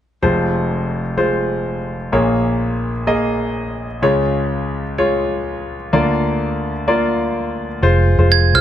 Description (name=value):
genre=pop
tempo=126 BPM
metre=4/4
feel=straight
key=F minor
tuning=A4 = 438 Hz
part: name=clear concert grand piano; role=accompaniment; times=0.2-8.6 s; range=F1 to Eb5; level=-16 LUFS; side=left 1 dB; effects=none
part: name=vintage muted fingered electric bass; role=bass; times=7.8-8.6 s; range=F1 to C2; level=-13 LUFS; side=equal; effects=none
part: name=glockenspiel with hard plastic mallets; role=melody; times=8.3-8.6 s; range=F6 to Ab6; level=-13 LUFS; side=right 8 dB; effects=none
room=moderate studio reverb, RT60 1.0 s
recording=none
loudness=-16 LUFS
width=side -11 dB against mid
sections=0.2-7.8 A section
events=none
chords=0.2 Fm; 2.1 Bbm7; 4.0 Db; 5.9 Bb/D; 7.8 Fm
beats=| 0.23 0.70 1.18 1.65 | 2.13 2.60 3.08 3.55 | 4.03 4.50 4.98 5.45 | 5.93 6.40 6.88 7.35 | 7.83 8.30